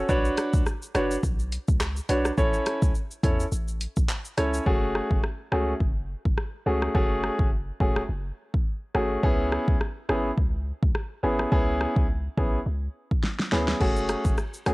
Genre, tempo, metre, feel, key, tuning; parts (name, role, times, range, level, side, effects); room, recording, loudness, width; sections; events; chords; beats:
dancehall; 105 BPM; 4/4; swing 56% on 16ths; F# minor; A4 = 439 Hz
clear baby grand piano; accompaniment; 0.0-14.7 s; A3 to C#5; -26 LUFS; equal; cassette tape
warm 808-style bass; bass; 0.0-14.7 s; E1 to E2; -29 LUFS; equal
deep house drum kit; drums; 0.1-14.7 s; crash cymbal, handclaps, hi-hat, kick drum, rim click, shaker, snare drum; -25 LUFS; equal; cassette tape
little or no reverb; home recording on cassette; -23 LUFS; side -22 dB against mid
0.0-4.7 A section; 4.7-14.7 B section
hi-hats muted 4.7-13.8; drum fill 13.2-13.8
0.1 Bmadd9; 2.4 A; 4.7 F#madd9; 9.2 C#m7; 13.8 F#madd9
| 0.09 0.66 1.23 1.81 | 2.38 2.95 3.52 4.09 | 4.66 5.23 5.81 6.38 | 6.95 7.52 8.09 8.66 | 9.23 9.81 10.38 10.95 | 11.52 12.09 12.66 13.23 | 13.81 14.38